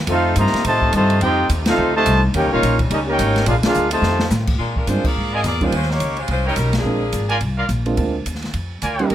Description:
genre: jazz, big band swing.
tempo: 213 BPM.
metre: 4/4.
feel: swing 60% on 8ths.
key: Bb mixolydian from 4.6 s.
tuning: A4 = 439 Hz.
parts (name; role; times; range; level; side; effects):
upright bass; bass; 0.0-9.1 s; Ab1 to Bb2; -20 LUFS; equal; none.
mellow trumpet section; melody; 0.1-4.3 s; Db4 to Bb5; -19 LUFS; equal; none.
bright trombone section; second line; 0.1-4.3 s; C3 to G4; -21 LUFS; equal; none.
warm saxophone section; sustained chords; 0.1-4.6 s; C3 to F4; -32 LUFS; left 2 dB; none.
open jazz drum kit; drums; 0.1-9.1 s; crash cymbal, hi-hat, kick drum, ride cymbal, snare drum; -25 LUFS; equal; none.
edgy saxophone section; melody; 4.6-9.1 s; F3 to Eb5; -23 LUFS; left 1 dB; none.
warm upright piano; accompaniment; 4.9-9.1 s; G3 to G4; -22 LUFS; right 4 dB; none.
clear trumpet section; stabs; 5.3-9.1 s; Eb4 to Ab5; -22 LUFS; right 2 dB; none.
room: light reverb.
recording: none.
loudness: -16 LUFS.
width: side -12 dB against mid.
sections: 0.0-4.6 A section; 4.6-9.1 B section.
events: band accent 1.6, 3.6, 5.0, 6.7; drum fill 4.0.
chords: 0.1 F7; 2.3 Eb7; 3.5 Bb7; 4.0 F7; 4.6 Bb7; 5.7 Eb7; 6.8 Bb7.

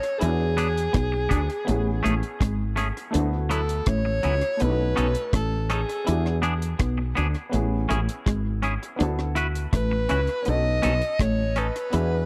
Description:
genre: lovers rock reggae.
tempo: 82 BPM.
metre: 4/4.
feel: straight.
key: A major.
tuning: A4 = 439 Hz.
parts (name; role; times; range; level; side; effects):
warm alto saxophone; melody; 0.0-12.3 s; G#4 to D#5; -30 LUFS; equal; tape echo.
warm baby grand piano; accompaniment; 0.0-12.3 s; A3 to A4; -37 LUFS; equal; none.
deep reggae drum kit; drums; 0.0-12.1 s; hi-hat, kick drum, rim click; -30 LUFS; equal; tape echo.
electric guitar through a small old amp; riff; 0.2-12.1 s; G#3 to E4; -33 LUFS; equal; tremolo.
woody fretless electric bass; bass; 0.2-12.3 s; G#1 to E2; -27 LUFS; equal; none.
twangy electric guitar; stabs; 0.6-11.7 s; F#3 to B4; -33 LUFS; equal; spring reverb.
room: little or no reverb.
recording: dry, close 1970s-style studio recording.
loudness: -24 LUFS.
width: mono.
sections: 0.0-12.3 A section.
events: none.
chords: 0.2 E7; 1.7 Amaj7; 3.1 D69; 4.6 B9; 6.1 E7; 7.5 Amaj7; 9.0 D69; 10.5 B9.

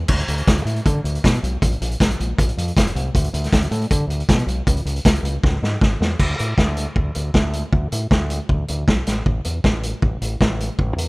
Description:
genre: indie rock.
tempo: 157 BPM.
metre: 4/4.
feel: straight.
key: unclear.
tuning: A4 = 439 Hz.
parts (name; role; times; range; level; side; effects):
growling fingered electric bass; bass; 0.0-11.1 s; F1 to D3; -22 LUFS; equal; overdrive.
vintage drum kit; drums; 0.1-11.1 s; crash cymbal, hi-hat, kick drum, snare drum; -19 LUFS; equal; none.
room: little or no reverb.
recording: rough home demo mix.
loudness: -17 LUFS.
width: side -28 dB against mid.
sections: 0.0-6.2 A section; 6.2-11.1 B section.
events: drum fill 5.4-6.2.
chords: none.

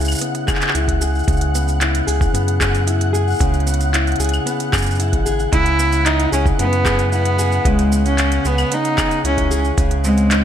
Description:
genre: folktronica.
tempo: 113 BPM.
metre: 4/4.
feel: straight.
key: C# minor.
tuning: A4 = 440 Hz.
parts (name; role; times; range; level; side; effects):
nylon-string guitar; arpeggios; 0.0-10.4 s; C#3 to G#4; -22 LUFS; left 2 dB; low-pass filter, tape echo.
warm sub bass; bass; 0.0-10.4 s; G#1 to F#2; -19 LUFS; equal; none.
organic electronic drum kit; drums; 0.0-10.4 s; claves, handclaps, hi-hat, shaker; -23 LUFS; right 1 dB; none.
flickering grainy texture; texture; 0.0-10.4 s; F#5 to F#6; -28 LUFS; left 2 dB; built-in reverb.
electronic kick drum; drums; 0.5-9.9 s; none; -20 LUFS; equal; none.
clear cello; melody; 5.5-10.4 s; G#3 to E4; -18 LUFS; equal; none.
room: light reverb.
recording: none.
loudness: -15 LUFS.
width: side -9 dB against mid.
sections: 0.0-10.4 A section.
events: filter sweep on nylon-string guitar 0.0-10.4.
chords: 0.0 C#m7; 1.3 E69; 5.5 C#m7; 9.8 G#7/C#.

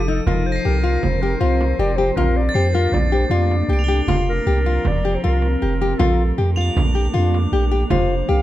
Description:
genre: contemporary instrumental, chamber music in an uneven meter.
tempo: 157 BPM.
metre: 5/4.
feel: straight.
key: Bb major.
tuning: A4 = 445 Hz.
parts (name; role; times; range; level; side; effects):
warm clarinet; melody; 0.0-8.4 s; A4 to F5; -26 LUFS; left 2 dB; none.
glassy FM pad; sustained chords; 0.0-8.4 s; F3 to Bb4; -26 LUFS; equal; ensemble chorus, built-in reverb.
punchy sub bass; bass; 0.0-8.4 s; F1 to F2; -19 LUFS; right 1 dB; none.
crotales; texture; 0.0-8.0 s; G6 to A7; -30 LUFS; right 1 dB; none.
nylon-string guitar; arpeggios; 0.1-8.4 s; Eb4 to G4; -22 LUFS; left 3 dB; none.
frame drum; percussion; 0.3-8.2 s; none; -25 LUFS; right 5 dB; none.
room: light reverb.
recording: close, detailed microphones.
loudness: -16 LUFS.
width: side -14 dB against mid.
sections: 0.3-8.4 A section.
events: none.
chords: 0.3 Fsus4; 2.2 Bbmaj7; 4.1 Fsus4; 6.0 Bbmaj7; 7.9 Fsus4.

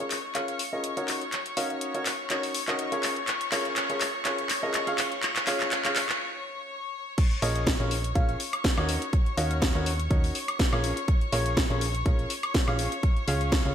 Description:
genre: piano house.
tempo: 123 BPM.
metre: 4/4.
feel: swing 54% on 16ths.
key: Bb minor.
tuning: A4 = 438 Hz.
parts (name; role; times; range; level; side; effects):
clear chamber violin section; sustained chords; 0.0-13.7 s; Db5 to Db6; -34 LUFS; left 3 dB; sidechain pumping.
clear upright piano; riff; 0.0-13.7 s; Db4 to F5; -32 LUFS; equal; sidechain pumping, low-pass filter, digital delay.
house drum kit; drums; 0.1-13.7 s; crash cymbal, handclaps, hi-hat, snare drum, woodblock; -29 LUFS; equal; gated reverb.
soft struck synth lead; melody; 0.3-1.8, 7.4-9.6 s; Eb5 to F5; -37 LUFS; right 1 dB; chorus, digital delay.
electronic kick drum; drums; 7.2-13.6 s; none; -25 LUFS; equal; none.
solid FM bass; bass; 7.4-13.7 s; Bb1 to Eb2; -29 LUFS; equal; sidechain pumping.
room: moderate plate reverb, RT60 1.6 s, digital ambience.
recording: bright 1980s-style digital production.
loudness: -25 LUFS.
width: side -9 dB against mid.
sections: 0.0-7.2 A section; 7.2-13.7 B section.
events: build-up 0.0-7.2; drum fill 0.0-6.2; filter sweep on upright piano 0.0-7.2; break 6.2-7.2; drop 7.2-13.7.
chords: 0.0 Bbm7; 5.0 Db; 7.2 Bbm7.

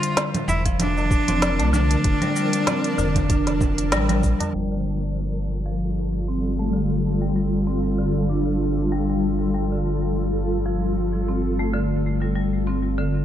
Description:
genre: organic downtempo.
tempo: 96 BPM.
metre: 4/4.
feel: swing 56% on 16ths.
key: G minor.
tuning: A4 = 440 Hz.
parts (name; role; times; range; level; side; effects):
clear cello; melody; 0.0-3.9 s; D4 to F4; -26 LUFS; right 1 dB; tape echo.
granular cloud pad; sustained chords; 0.0-13.2 s; F3 to A5; -27 LUFS; equal; built-in reverb, sidechain pumping.
organic electronic drum kit; drums; 0.0-4.5 s; cabasa, congas, hi-hat, snare drum; -25 LUFS; right 1 dB; none.
warm sub bass; bass; 0.5-13.2 s; F1 to C2; -25 LUFS; equal; tube saturation.
tabla; percussion; 0.5-4.5 s; none; -32 LUFS; equal; none.
marimba with hard mallets; arpeggios; 0.7-13.1 s; D3 to D4; -25 LUFS; left 1 dB; vintage 12-bit sampler grit, low-pass filter, tape echo.
electronic kick drum; drums; 0.7-4.4 s; none; -22 LUFS; equal; none.
room: light reverb, digital ambience.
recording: low-pass filter.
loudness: -20 LUFS.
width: side -11 dB against mid.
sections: 0.0-4.5 A section; 4.5-13.2 B section.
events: band accent 3.9-4.2; filter sweep on marimba 4.5-13.2; filter sweep 4.5-13.2.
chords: 0.0 Bbmaj7/F; 4.5 G7sus2.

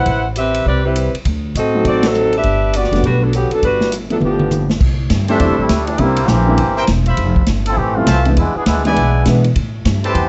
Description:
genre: jazz, big band swing.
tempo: 202 BPM.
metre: 4/4.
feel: swing 62% on 8ths.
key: G major, C major from 4.8 s.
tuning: A4 = 439 Hz.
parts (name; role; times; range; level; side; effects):
mellow saxophone section; melody; 0.0-4.7 s; D3 to F#5; -18 LUFS; equal; none.
upright bass; bass; 0.0-10.3 s; E1 to B2; -20 LUFS; equal; none.
swinging big-band drum kit; drums; 0.1-10.2 s; crash cymbal, hi-hat, kick drum, ride cymbal, snare drum, toms; -22 LUFS; equal; none.
warm concert grand piano; accompaniment; 1.7-9.4 s; E3 to E4; -22 LUFS; equal; none.
muted trombone section; second line; 5.3-10.3 s; E3 to A4; -21 LUFS; equal; none.
clear trumpet section; stabs; 5.3-10.3 s; D4 to B5; -22 LUFS; equal; none.
room: moderate club reverb, RT60 0.6 s.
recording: dark, warm production, nothing above 7.9 kHz.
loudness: -15 LUFS.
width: mono.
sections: 0.0-4.8 A section; 4.8-10.3 B section.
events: band accent 2.0; drum fill 4.2-4.8; trombone section solo 4.8-10.3.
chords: 0.1 Am9; 1.2 D7b9; 2.4 Gmaj7; 4.2 G13; 4.8 C69; 6.0 C7; 7.2 Fmaj7; 8.4 E7; 9.6 Am9.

